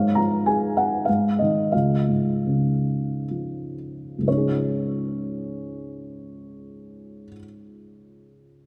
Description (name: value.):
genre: classical, lyrical solo piano.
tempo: 57-103 BPM.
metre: 3/4.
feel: rubato.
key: Db major.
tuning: A4 = 440 Hz.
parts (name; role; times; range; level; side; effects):
felt-muted upright piano; solo; 0.0-8.7 s; Db2 to Bb5; -24 LUFS; equal; none.
room: wet concert hall reverb, RT60 2.5 s.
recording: none.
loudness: -23 LUFS.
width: mono.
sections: 0.0-4.3 A section; 4.3-8.7 B section.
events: slowing down 0.0-4.3.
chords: 0.0 Gbmaj9/Ab; 1.1 Ab5; 1.7 Db; 4.3 Dbadd9.